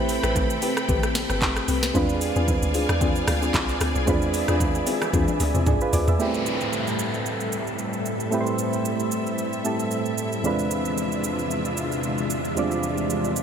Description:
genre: amapiano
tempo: 113 BPM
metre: 4/4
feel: swing 55% on 16ths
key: A minor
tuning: A4 = 440 Hz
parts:
  - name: soft electric-piano-like synth keys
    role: accompaniment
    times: 0.0-13.4 s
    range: E2 to E5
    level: -27 LUFS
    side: right 3 dB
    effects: chorus
  - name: string machine, cellos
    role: sustained chords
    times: 0.0-13.4 s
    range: E2 to B5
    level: -27 LUFS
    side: left 1 dB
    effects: ensemble chorus, sidechain pumping
  - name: deep log drum bass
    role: bass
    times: 0.0-6.2 s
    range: G1 to E2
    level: -26 LUFS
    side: equal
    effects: none
  - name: afro-pop drum kit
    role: drums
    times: 0.1-13.4 s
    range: handclaps, hi-hat, kick drum, rim click, shaker, snare drum, toms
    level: -27 LUFS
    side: equal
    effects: gated reverb
  - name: deep mellow chord stab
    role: stabs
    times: 0.2-6.2 s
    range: C4 to B4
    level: -29 LUFS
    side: left 5 dB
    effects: chorus, ping-pong delay
  - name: bongos and congas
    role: percussion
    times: 0.4-5.8 s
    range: none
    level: -35 LUFS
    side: right 2 dB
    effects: none
  - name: downlifter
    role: sound effects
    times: 6.2-10.4 s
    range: none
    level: -32 LUFS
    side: equal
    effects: none
room: moderate lush hall reverb, RT60 2.4 s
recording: bright 1980s-style digital production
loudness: -21 LUFS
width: side -7 dB against mid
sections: 0.0-6.2 A section; 6.2-13.4 B section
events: drop 0.0-6.2; drum fill 5.1-6.2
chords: 0.0 Am9; 1.9 E7b9b13; 6.2 Am9; 10.4 E7b9b13

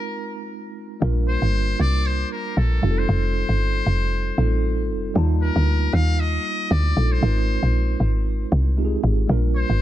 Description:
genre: amapiano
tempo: 116 BPM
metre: 4/4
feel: swing 55% on 16ths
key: Bb major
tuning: A4 = 443 Hz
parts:
  - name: trumpet with metal mute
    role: melody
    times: 0.0-9.8 s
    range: A4 to F5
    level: -28 LUFS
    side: left 3 dB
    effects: analog delay
  - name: tine electric piano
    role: accompaniment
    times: 0.0-9.8 s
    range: G3 to A5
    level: -27 LUFS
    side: right 2 dB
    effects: fast stereo tremolo
  - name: woody log drum bass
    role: bass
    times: 1.0-9.8 s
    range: F1 to Eb2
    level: -19 LUFS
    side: equal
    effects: none
room: small room ambience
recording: echo-heavy mix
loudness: -19 LUFS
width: side -13 dB against mid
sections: 0.0-1.0 A section; 1.0-9.8 B section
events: drop 1.0-9.8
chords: 0.0 Ab69; 1.0 Bb6; 2.8 F9; 5.2 Ebmaj9#11; 7.2 Ab69; 9.3 Bb6

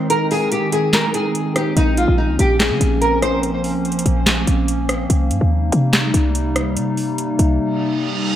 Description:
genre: hip hop, trap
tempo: 144 BPM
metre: 4/4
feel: half-time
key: unclear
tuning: A4 = 441 Hz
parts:
  - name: warbly tape-like pad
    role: sustained chords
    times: 0.0-8.4 s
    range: C3 to Eb4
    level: -21 LUFS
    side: equal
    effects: chorus, built-in reverb
  - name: nylon-string guitar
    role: melody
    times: 0.1-3.4 s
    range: Eb4 to C5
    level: -19 LUFS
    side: left 1 dB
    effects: lush chorus, low-pass filter, tape echo
  - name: booming analog drum machine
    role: drums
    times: 0.1-7.5 s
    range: handclaps, hi-hat, rim click, snare drum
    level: -20 LUFS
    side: equal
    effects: none
  - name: short 808-style bass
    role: bass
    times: 1.8-7.6 s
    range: Bb1 to Db3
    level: -18 LUFS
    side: equal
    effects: none
  - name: reverse cymbal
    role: sound effects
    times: 7.8-8.4 s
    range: none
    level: -24 LUFS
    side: right 6 dB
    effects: none
room: wet plate reverb, RT60 1.6 s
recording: dreamy mix soaked in reverb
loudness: -15 LUFS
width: side -11 dB against mid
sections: 0.0-8.4 A section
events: break 0.0-1.8; drums muted 7.6-8.4; reverse cymbal 7.8-8.4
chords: 0.0 Ab; 1.8 Bbmadd9; 5.1 Cm7

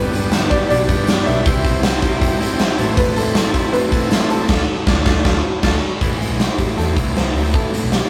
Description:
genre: jangly indie pop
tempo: 158 BPM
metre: 4/4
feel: straight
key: unclear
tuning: A4 = 440 Hz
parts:
  - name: warm upright piano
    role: melody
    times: 0.0-8.1 s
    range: G4 to E5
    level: -26 LUFS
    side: equal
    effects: none
  - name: combo organ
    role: accompaniment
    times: 0.0-5.8 s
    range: B3 to A4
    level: -27 LUFS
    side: equal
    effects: none
  - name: crunchy overdriven guitar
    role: accompaniment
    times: 0.0-8.1 s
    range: G2 to F4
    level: -26 LUFS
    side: equal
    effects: none
  - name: twelve-string electric guitar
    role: arpeggios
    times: 0.0-8.1 s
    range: E3 to G4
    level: -30 LUFS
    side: equal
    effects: none
  - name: vintage muted fingered electric bass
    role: bass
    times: 0.0-8.0 s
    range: G1 to E2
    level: -26 LUFS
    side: equal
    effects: none
  - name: big rock drum kit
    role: drums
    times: 0.1-8.0 s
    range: crash cymbal, hi-hat, kick drum, snare drum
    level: -19 LUFS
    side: equal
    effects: none
  - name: tambourine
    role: percussion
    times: 0.1-4.4 s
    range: none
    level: -42 LUFS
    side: equal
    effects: none
room: wet studio reverb, RT60 0.5 s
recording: rough rehearsal-room recording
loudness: -17 LUFS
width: mono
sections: 0.0-6.0 A section; 6.0-8.1 B section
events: band accent 4.5-6.0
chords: 0.0 G; 1.5 C; 2.8 Am; 4.5 Dm; 6.0 Am

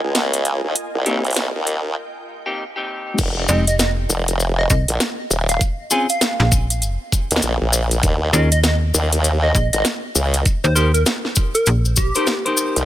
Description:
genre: glitch hop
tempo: 99 BPM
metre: 4/4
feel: swing 61% on 16ths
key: F minor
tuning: A4 = 438 Hz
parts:
  - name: formant-sweep wobble bass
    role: bass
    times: 0.0-12.8 s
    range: Eb1 to Eb2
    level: -18 LUFS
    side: equal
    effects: chorus, tube saturation, high-pass filter
  - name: ethereal airy pad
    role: texture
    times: 0.0-2.0 s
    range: F4 to Ab5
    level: -32 LUFS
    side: right 2 dB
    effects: ensemble chorus, built-in reverb, sidechain pumping
  - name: drum and bass drum kit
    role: drums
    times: 0.1-12.8 s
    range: crash cymbal, hi-hat, rim click, snare drum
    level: -22 LUFS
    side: equal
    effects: none
  - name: clean electric guitar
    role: stabs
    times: 1.1-12.8 s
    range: Ab3 to C5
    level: -24 LUFS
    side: left 2 dB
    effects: sidechain pumping, digital delay
  - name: electronic kick drum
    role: drums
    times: 3.2-12.1 s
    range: none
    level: -18 LUFS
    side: equal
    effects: none
  - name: cabasa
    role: percussion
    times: 3.2-12.8 s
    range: none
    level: -23 LUFS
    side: left 3 dB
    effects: none
  - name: plucky unison lead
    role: melody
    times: 3.5-12.5 s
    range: G4 to Ab5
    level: -24 LUFS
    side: right 1 dB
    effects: digital delay
  - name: slap-like FM bass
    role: bass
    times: 3.5-12.1 s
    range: F1 to Eb2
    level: -17 LUFS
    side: equal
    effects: none
room: digital ambience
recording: high-pass filter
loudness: -16 LUFS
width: side -13 dB against mid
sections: 0.0-3.2 A section; 3.2-12.8 B section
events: build-up 0.0-3.2; filter sweep on clean electric guitar 0.0-3.2; break 2.0-3.2; drop 3.2-12.8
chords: 0.0 Eb7sus4; 0.8 Cm7; 3.2 F7(no3); 5.6 N.C.; 8.0 Eb7(no3); 10.5 Cm7

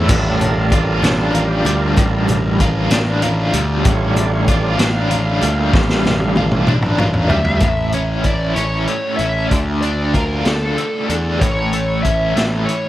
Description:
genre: psychedelic rock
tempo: 64 BPM (dotted quarters)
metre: 6/8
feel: straight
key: unclear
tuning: A4 = 439 Hz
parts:
  - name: overdriven tonewheel organ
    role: sustained chords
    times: 0.0-6.6 s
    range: G3 to F5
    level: -23 LUFS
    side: right 4 dB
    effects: slow rotary speaker
  - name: biting overdriven guitar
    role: riff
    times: 0.0-12.9 s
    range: A2 to F4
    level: -20 LUFS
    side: equal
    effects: tremolo
  - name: fuzz picked electric bass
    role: bass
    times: 0.0-12.7 s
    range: A1 to E2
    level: -19 LUFS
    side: equal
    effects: overdrive
  - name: vintage drum kit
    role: drums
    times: 0.1-12.8 s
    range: crash cymbal, hi-hat, kick drum, snare drum, toms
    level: -19 LUFS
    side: equal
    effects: none
  - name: congas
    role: percussion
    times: 0.1-7.5 s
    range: none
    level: -27 LUFS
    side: left 1 dB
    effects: none
  - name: fuzz lead guitar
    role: melody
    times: 7.3-12.9 s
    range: A4 to E5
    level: -21 LUFS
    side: equal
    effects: wah, distortion, analog delay
room: light reverb, small room ambience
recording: none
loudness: -14 LUFS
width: side -14 dB against mid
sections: 0.0-7.6 A section; 7.6-12.9 B section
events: tonewheel organ solo 0.0-7.6; drum fill 5.7-7.6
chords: 0.1 Gm7/A; 7.6 A; 9.5 Dm; 11.4 A

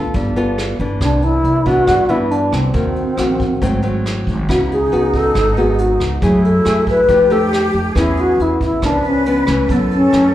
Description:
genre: bossa nova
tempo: 138 BPM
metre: 4/4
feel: straight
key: unclear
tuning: A4 = 437 Hz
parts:
  - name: mellow wooden-headed alto flute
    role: melody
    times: 0.0-10.3 s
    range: B3 to B4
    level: -16 LUFS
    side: equal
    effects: slapback echo
  - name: nylon-string guitar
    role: accompaniment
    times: 0.0-10.3 s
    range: F#2 to A4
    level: -20 LUFS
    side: left 1 dB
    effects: slapback echo
  - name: upright bass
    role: bass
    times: 0.0-10.3 s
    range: G1 to G2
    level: -20 LUFS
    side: equal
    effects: none
  - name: vintage brush drum kit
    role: drums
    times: 0.1-10.2 s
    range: hi-hat, kick drum, rim click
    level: -24 LUFS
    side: right 1 dB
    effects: none
  - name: breathy mellow flute section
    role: second line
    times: 4.5-10.3 s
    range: D#4 to B4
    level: -23 LUFS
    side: right 1 dB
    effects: slapback echo
room: light reverb, studio ambience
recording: live gig heard through the venue's PA, club reverb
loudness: -13 LUFS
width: side -13 dB against mid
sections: 0.0-10.3 A section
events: none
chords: 0.1 G9; 1.0 Cmaj9; 2.7 D#m; 3.6 G#7b9; 4.5 C#m11; 6.2 F#m9; 7.1 F9; 8.0 E6; 8.8 C#7b9; 9.7 F#m7

